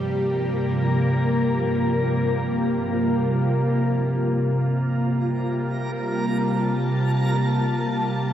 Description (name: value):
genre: ambient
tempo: free time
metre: none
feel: none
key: G minor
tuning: A4 = 440 Hz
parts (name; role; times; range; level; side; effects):
- glassy FM pad; sustained chords; 0.0-8.3 s; G2 to A5; -21 LUFS; equal; ensemble chorus, built-in reverb
- bowed-like drone; drone; 0.0-8.3 s; G3 to G4; -32 LUFS; left 1 dB; built-in reverb
- backwards swelling texture; texture; 4.7-8.3 s; Bb4; -32 LUFS; right 3 dB; built-in reverb
- soft synth bell; arpeggios; 4.6-8.3 s; none; barely audible; none; none
room: moderate plate reverb, RT60 3.8 s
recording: dreamy mix soaked in reverb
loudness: -20 LUFS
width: side -10 dB against mid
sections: 0.0-4.2 A section; 4.2-8.3 B section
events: none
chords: 0.0 Bbsus2/G; 4.2 Gm11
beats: free time